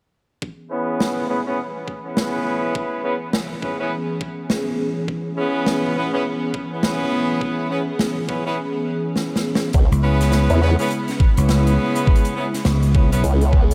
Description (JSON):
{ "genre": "glitch hop", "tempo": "103 BPM", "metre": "4/4", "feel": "swing 60% on 16ths", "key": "C# minor pentatonic", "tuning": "A4 = 440 Hz", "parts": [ { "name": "warm analog pad", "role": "sustained chords", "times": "0.4-13.7 s", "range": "C#3 to G#4", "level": "-28 LUFS", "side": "equal", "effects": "chorus, sidechain pumping" }, { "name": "electronic kick drum", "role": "drums", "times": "0.4-13.7 s", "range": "none", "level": "-20 LUFS", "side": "equal", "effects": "high-pass filter on kick, studio reverb" }, { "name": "clear horn section", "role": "stabs", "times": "0.7-13.2 s", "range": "B3 to B4", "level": "-26 LUFS", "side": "equal", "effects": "sidechain pumping, low-pass filter, diffuse ambient delay" }, { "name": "swinging big-band drum kit", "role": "drums", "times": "1.0-13.7 s", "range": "hi-hat, snare drum", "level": "-29 LUFS", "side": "equal", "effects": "studio reverb" }, { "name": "formant-sweep wobble bass", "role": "bass", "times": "9.7-13.7 s", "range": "C#2 to E2", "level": "-19 LUFS", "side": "equal", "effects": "chorus" }, { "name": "vintage slap bass", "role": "bass", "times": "9.9-13.2 s", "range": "C#2", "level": "-19 LUFS", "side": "equal", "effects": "tube saturation" } ], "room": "moderate huge ambient reverb, RT60 4.2 s", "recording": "dreamy mix soaked in reverb", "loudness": "-20 LUFS", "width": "mono", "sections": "0.4-9.7 A section; 9.7-13.7 B section", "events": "filter sweep on horn section 0.4-9.7; filter sweep on analog synth pad 0.4-9.7; drum fill 9.2-9.7", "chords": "0.4 C#m7", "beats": "| 0.42 1.00 1.59 2.17 | 2.75 3.34 3.92 4.50 | 5.08 5.67 6.25 6.83 | 7.41 8.00 8.58 9.16 | 9.74 10.33 10.91 11.49 | 12.07 12.66 13.24" }